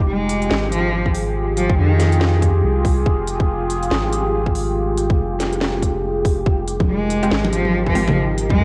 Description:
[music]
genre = deep dubstep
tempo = 141 BPM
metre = 4/4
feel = swing 59% on 16ths, half-time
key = F minor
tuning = A4 = 441 Hz
[part]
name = deep dark ambient pad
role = sustained chords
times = 0.0-8.6 s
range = Eb4 to Bb4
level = -25 LUFS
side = equal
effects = chorus, built-in reverb
[part]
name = soft dub sub bass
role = bass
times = 0.0-8.6 s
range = F1 to F2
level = -24 LUFS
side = equal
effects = none
[part]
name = clear cello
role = melody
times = 0.1-2.4, 6.9-8.6 s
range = Eb3 to Ab3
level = -24 LUFS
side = equal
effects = cassette tape, dub echo
[part]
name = garage drum kit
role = drums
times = 0.3-8.5 s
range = hi-hat, snare drum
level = -28 LUFS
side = equal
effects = cassette tape
[part]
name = electronic kick drum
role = drums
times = 1.1-8.6 s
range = none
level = -22 LUFS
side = equal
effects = cassette tape
[part]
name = congas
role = percussion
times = 6.8-8.6 s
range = none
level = -25 LUFS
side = equal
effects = none
[part]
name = filtered dub chord stab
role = stabs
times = 7.2-8.0 s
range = Ab3 to G4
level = -30 LUFS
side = equal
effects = none
[sound]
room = light reverb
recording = home recording on cassette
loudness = -19 LUFS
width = mono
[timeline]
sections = 0.0-8.6 A section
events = none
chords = 0.0 Fmadd9

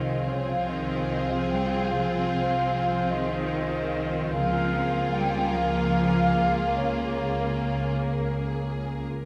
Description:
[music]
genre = cinematic, emotional film score for orchestra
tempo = 49 BPM (dotted quarters)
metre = 6/8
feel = rubato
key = Bb minor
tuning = A4 = 442 Hz
[part]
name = rich studio violin section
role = melody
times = 0.0-9.1 s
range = Ab4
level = -40 LUFS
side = equal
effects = none
[part]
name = mellow small flute group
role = second line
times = 0.0-8.9 s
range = Db5 to G5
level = -32 LUFS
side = equal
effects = none
[part]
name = rich studio violin section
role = second line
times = 0.0-9.3 s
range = F4 to Bb4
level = -36 LUFS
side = equal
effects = none
[part]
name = rich studio viola section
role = accompaniment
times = 0.0-9.1 s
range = Bb3 to C4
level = -36 LUFS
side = equal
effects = none
[part]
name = warm French horn section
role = sustained chords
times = 0.0-9.0 s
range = F3 to C5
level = -36 LUFS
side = equal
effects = none
[part]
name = concert harp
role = arpeggios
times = 0.0-9.3 s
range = C3 to C6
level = -38 LUFS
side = equal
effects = none
[part]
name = rich studio cello section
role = bass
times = 0.0-8.8 s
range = Db3 to G3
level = -33 LUFS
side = equal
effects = none
[part]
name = warm studio double bass section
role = bass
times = 0.0-9.1 s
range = C2 to Db2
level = -34 LUFS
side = equal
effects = none
[sound]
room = wet scoring stage reverb, RT60 1.6 s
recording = none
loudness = -26 LUFS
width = mono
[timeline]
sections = 0.0-9.3 A section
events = none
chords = 0.0 Fm/C; 4.3 Bbm7/Db

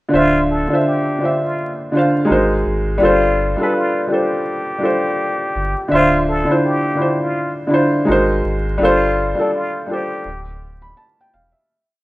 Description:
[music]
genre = lo-fi hip hop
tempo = 83 BPM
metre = 4/4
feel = swing 60% on 16ths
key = unclear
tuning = A4 = 437 Hz
[part]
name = trumpet with plunger mute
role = melody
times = 0.1-10.4 s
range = F4 to A4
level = -22 LUFS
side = equal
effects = low-pass filter
[part]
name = felt-muted upright piano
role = accompaniment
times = 0.1-11.9 s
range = D3 to B5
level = -16 LUFS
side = equal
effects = low-pass filter
[part]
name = sub bass with octave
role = bass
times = 0.1-11.5 s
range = D1 to G#1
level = -23 LUFS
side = equal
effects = none
[sound]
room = small room ambience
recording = rough home demo mix, vinyl crackle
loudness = -14 LUFS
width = side -18 dB against mid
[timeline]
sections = 0.1-11.7 A section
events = fade-out 8.8-11.7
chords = 0.1 Dm9; 2.3 G#9; 3.0 G9sus4; 5.9 Dm9; 8.1 G#9; 8.8 G9sus4; 10.2 Dsus2

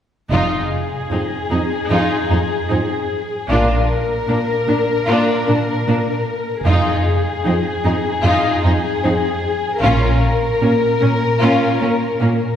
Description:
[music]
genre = cinematic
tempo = 76 BPM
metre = 4/4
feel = straight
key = F minor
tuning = A4 = 440 Hz
[part]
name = dark symphonic violin section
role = melody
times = 0.3-12.6 s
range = Ab4 to Bb4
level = -21 LUFS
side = left 4 dB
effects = none
[part]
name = warm symphonic violin section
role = second line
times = 0.3-12.3 s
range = Bb3 to F4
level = -23 LUFS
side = left 2 dB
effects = none
[part]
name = rich symphonic viola section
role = accompaniment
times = 0.3-12.3 s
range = Db4 to Eb4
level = -23 LUFS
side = right 1 dB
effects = none
[part]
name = rich symphonic cello section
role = bass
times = 0.3-12.3 s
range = F2 to Bb2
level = -20 LUFS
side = right 2 dB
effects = none
[part]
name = rich symphonic double bass section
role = bass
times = 0.3-10.2 s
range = F1 to Bb1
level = -20 LUFS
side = right 1 dB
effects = none
[sound]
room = wet concert hall reverb, RT60 1.9 s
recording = heard from further back in the room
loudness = -15 LUFS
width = side -9 dB against mid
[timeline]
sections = 0.3-12.6 A section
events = none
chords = 0.3 Fm7; 3.5 Bb; 6.7 Fm7; 9.8 Bbm

